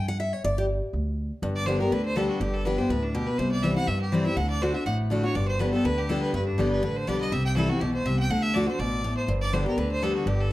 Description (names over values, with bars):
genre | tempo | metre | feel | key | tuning
bluegrass | 244 BPM | 4/4 | swing 54% on 8ths | G major | A4 = 435 Hz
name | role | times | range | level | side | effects
picked steel-string acoustic guitar | accompaniment | 0.0-10.5 s | G2 to F#5 | -26 LUFS | left 1 dB | none
upright bass | bass | 0.0-10.5 s | G1 to G2 | -29 LUFS | right 1 dB | none
bright fiddle | melody | 1.6-10.5 s | D4 to G5 | -30 LUFS | equal | plate reverb
room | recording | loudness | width
moderate large studio reverb, RT60 0.8 s | dark, warm production | -23 LUFS | side -16 dB against mid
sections
0.0-1.4 A section; 1.4-10.5 B section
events
steel-string acoustic guitar solo 0.0-1.4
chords
0.4 G5; 1.4 G; 3.4 C; 4.4 D; 5.4 G; 7.3 C; 8.3 D; 9.3 G